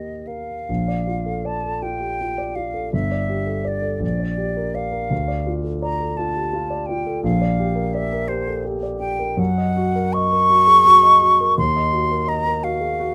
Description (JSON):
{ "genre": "classical, impressionist duo for flute and grand piano", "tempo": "56 BPM (dotted quarters)", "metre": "6/8", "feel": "rubato", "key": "Bb lydian, Gb lydian from 9.4 s", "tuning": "A4 = 440 Hz", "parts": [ { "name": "concert flute", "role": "melody", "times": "0.0-13.1 s", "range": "C5 to Db6", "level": "-21 LUFS", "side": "equal", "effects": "none" }, { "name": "dark grand piano", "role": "accompaniment", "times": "0.0-13.1 s", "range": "G1 to Eb5", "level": "-25 LUFS", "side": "equal", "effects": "none" } ], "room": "light reverb", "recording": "close, detailed microphones", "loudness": "-19 LUFS", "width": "mono", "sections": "0.7-13.1 A section", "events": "none", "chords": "0.0 Eb; 0.7 Bbmaj7; 2.9 Gsus2; 4.0 Bb6; 5.1 Dm; 7.2 Bb6; 9.4 Gb6; 11.6 Ebmadd9" }